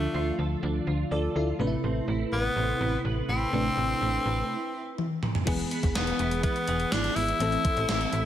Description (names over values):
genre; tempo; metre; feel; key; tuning
1980s-style pop; 124 BPM; 4/4; straight; unclear; A4 = 439 Hz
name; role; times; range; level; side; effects
raspy tenor saxophone; melody; 0.0-8.3 s; A3 to E4; -29 LUFS; left 2 dB; ping-pong delay
FM electric piano; accompaniment; 0.0-8.3 s; C3 to D5; -31 LUFS; left 3 dB; chorus
twelve-string electric guitar; riff; 0.0-8.3 s; A3 to B4; -34 LUFS; right 6 dB; ensemble chorus, ping-pong delay
slap-like FM bass; bass; 0.0-8.3 s; E1 to D2; -30 LUFS; equal; none
gated 80s digital drum machine; drums; 5.0-8.2 s; crash cymbal, hi-hat, kick drum, snare drum, toms; -29 LUFS; equal; gated reverb, gated reverb snare, overdrive
room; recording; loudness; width
light reverb; none; -25 LUFS; side -11 dB against mid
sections
0.0-5.5 A section; 5.5-8.3 B section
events
stop 4.5-5.5; drum fill 5.0-5.5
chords
0.0 Dm; 1.6 Amadd9; 5.5 E; 7.4 Am